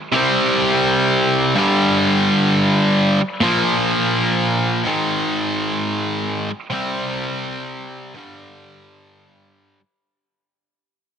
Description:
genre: rock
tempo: free time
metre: none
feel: none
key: G phrygian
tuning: A4 = 440 Hz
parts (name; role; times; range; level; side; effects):
- distorted electric guitar; solo; 0.1-9.8 s; G2 to C4; -16 LUFS; equal; overdrive
room: light reverb, digital ambience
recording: heavily compressed radio sound, multiband compression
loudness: -16 LUFS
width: side -8 dB against mid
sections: 0.0-3.4 A section; 3.4-10.0 B section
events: fade-out 3.4-10.0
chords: 0.1 C5; 1.6 G5; 3.4 Bb5; 4.9 Ab5; 6.7 C5; 8.2 G5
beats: free time

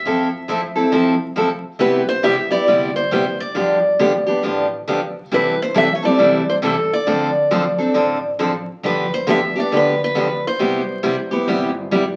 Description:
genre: acoustic string swing (jazz manouche)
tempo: 136 BPM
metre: 4/4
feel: swing 63% on 8ths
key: C major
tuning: A4 = 440 Hz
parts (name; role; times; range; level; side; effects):
- picked steel-string acoustic guitar; melody; 0.0-11.9 s; A4 to E5; -21 LUFS; equal; none
- upright bass; bass; 0.0-12.2 s; G1 to G2; -37 LUFS; equal; none
- picked steel-string acoustic guitar; accompaniment; 0.1-12.0 s; C3 to A4; -20 LUFS; equal; none
room: wet club reverb, RT60 0.7 s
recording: very old 78 rpm record, vinyl crackle, nothing above 10.3 kHz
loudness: -18 LUFS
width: mono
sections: 0.0-12.2 A section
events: none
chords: 0.0 Fmaj7; 1.8 Cmaj7; 3.6 G7; 5.3 C6; 7.1 Dm7; 8.8 G7; 10.6 Cmaj7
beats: | 0.04 0.48 0.92 1.36 | 1.80 2.24 2.68 3.12 | 3.56 4.00 4.44 4.88 | 5.32 5.76 6.20 6.64 | 7.08 7.52 7.96 8.40 | 8.84 9.28 9.72 10.16 | 10.60 11.04 11.48 11.92

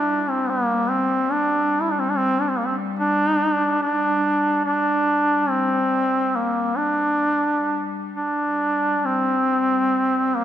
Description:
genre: caucasian folk, Caucasian lament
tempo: 66-74 BPM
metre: 4/4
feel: rubato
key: G minor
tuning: A4 = 441 Hz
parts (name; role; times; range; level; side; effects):
- warm duduk; melody; 0.0-10.4 s; Bb3 to E4; -19 LUFS; equal; none
- warm studio cello section; drone; 0.0-10.4 s; G3; -32 LUFS; left 3 dB; none
room: wet church reverb, RT60 2.9 s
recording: none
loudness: -19 LUFS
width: side -10 dB against mid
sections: 0.0-10.4 A section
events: none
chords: none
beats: 0.53 1.34 | 2.17 3.01 3.84 4.67 | 5.53 6.39 7.27 8.18 | 9.08 9.95

